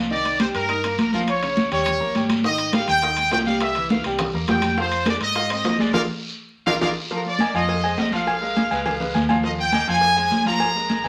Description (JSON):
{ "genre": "latin, salsa", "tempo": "206 BPM", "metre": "4/4", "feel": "straight", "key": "Eb major", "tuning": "A4 = 440 Hz", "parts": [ { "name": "bright grand piano", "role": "accompaniment", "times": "0.0-11.1 s", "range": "Db3 to F6", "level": "-30 LUFS", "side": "equal", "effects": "none" }, { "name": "hollow-body short-scale fingered electric bass", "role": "bass", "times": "0.0-11.1 s", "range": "Ab1 to Ab2", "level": "-34 LUFS", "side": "equal", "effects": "none" }, { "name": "brilliant trumpet section", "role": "melody", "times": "0.1-11.1 s", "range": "Bb4 to Bb5", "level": "-24 LUFS", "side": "equal", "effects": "none" }, { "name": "congas", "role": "percussion", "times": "0.1-11.1 s", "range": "none", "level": "-27 LUFS", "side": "equal", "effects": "none" }, { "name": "guiro", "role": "percussion", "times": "0.1-11.1 s", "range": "none", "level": "-37 LUFS", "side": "equal", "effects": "none" }, { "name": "timbales and agogo bells", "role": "percussion", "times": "0.3-11.1 s", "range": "none", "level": "-31 LUFS", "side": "equal", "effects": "none" }, { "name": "bongos and cowbell", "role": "percussion", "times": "2.4-11.0 s", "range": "none", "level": "-34 LUFS", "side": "equal", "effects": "none" } ], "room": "wet studio reverb, RT60 0.7 s", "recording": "vinyl crackle", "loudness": "-21 LUFS", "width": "mono", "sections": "0.0-7.1 A section; 7.1-11.1 B section", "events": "band accent 5.9-7.1; drum fill 6.4-7.1", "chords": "0.1 Cm7; 1.3 Bbm; 1.9 Eb7; 2.4 Abmaj7; 3.6 C7; 4.8 Fm7; 5.9 Bb7(no3); 7.1 Ebsus2; 7.7 Fm7; 8.3 Bb5; 8.9 Db7; 9.4 Ebadd9; 10.0 Fm" }